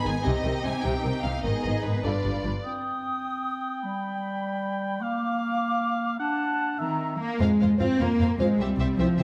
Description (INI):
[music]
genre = cinematic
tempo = 101 BPM (dotted quarters)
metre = 6/8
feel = straight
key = C minor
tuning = A4 = 440 Hz
[part]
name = warm symphonic violin section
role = melody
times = 0.0-2.7, 7.4-9.2 s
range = Cb5 to Ab5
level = -37 LUFS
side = equal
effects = none
[part]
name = warm symphonic violin section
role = second line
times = 0.0-2.5, 7.4-9.2 s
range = Eb4 to C5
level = -37 LUFS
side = equal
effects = none
[part]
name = dark symphonic viola section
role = accompaniment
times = 0.0-2.5, 8.0-9.2 s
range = C3 to D4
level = -34 LUFS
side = equal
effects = none
[part]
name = rich symphonic cello section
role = bass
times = 0.1-2.5, 6.8-9.2 s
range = G2 to C4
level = -28 LUFS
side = equal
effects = none
[part]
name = warm symphonic double bass section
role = bass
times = 0.1-2.5, 7.4-9.2 s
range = G1 to F2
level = -31 LUFS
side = equal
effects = none
[part]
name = flute section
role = second line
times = 2.6-7.2 s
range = A5 to Eb6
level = -35 LUFS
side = equal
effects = none
[part]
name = mellow clarinet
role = second line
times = 2.7-7.2 s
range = G3 to D4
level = -33 LUFS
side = equal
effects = none
[part]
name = mellow cor anglais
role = second line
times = 2.7-7.2 s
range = E5 to G5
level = -34 LUFS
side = equal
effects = none
[part]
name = dark French horn section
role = sustained chords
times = 7.8-9.1 s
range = E4 to C5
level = -33 LUFS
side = equal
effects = none
[sound]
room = moderate scoring stage reverb, RT60 1.9 s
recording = none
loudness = -27 LUFS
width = mono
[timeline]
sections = 0.0-2.7 A section; 2.7-7.4 B section; 7.4-9.2 C section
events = none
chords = 0.2 Cm; 1.4 Abm; 2.0 G7; 2.7 Cm; 3.8 G; 5.0 Bb; 6.2 D; 6.8 C7; 7.4 Fm; 8.6 C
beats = | 0.25 0.83 | 1.43 2.04 | 2.65 3.25 | 3.84 4.42 | 5.01 5.59 | 6.19 6.79 | 7.41 8.00 | 8.59 9.18